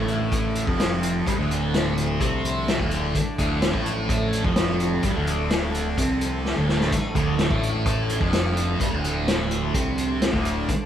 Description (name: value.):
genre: psychedelic rock.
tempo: 127 BPM.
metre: 4/4.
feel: straight.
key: D minor.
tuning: A4 = 440 Hz.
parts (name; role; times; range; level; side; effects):
dark chamber string section; sustained chords; 0.0-10.9 s; F3 to A4; -35 LUFS; right 2 dB; none.
thick fuzz guitar; riff; 0.0-10.7 s; D2 to C4; -24 LUFS; equal; distortion, phaser.
fuzz fingered electric bass; bass; 0.0-10.7 s; D1 to C2; -29 LUFS; equal; overdrive.
tanpura; drone; 0.0-10.9 s; D2 to D3; -34 LUFS; right 1 dB; none.
vintage drum kit; drums; 0.1-10.8 s; hi-hat, kick drum, snare drum, splash cymbal; -25 LUFS; left 1 dB; none.
room: light reverb.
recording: band playing live in one room.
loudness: -21 LUFS.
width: side -10 dB against mid.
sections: 0.0-10.9 A section.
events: drum fill 6.4-6.9.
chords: 0.0 Dm.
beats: 0.32 0.79 | 1.26 1.74 2.21 2.68 | 3.15 3.62 4.09 4.56 | 5.04 5.51 5.98 6.45 | 6.92 7.39 7.86 8.33 | 8.80 9.27 9.74 10.22 | 10.69.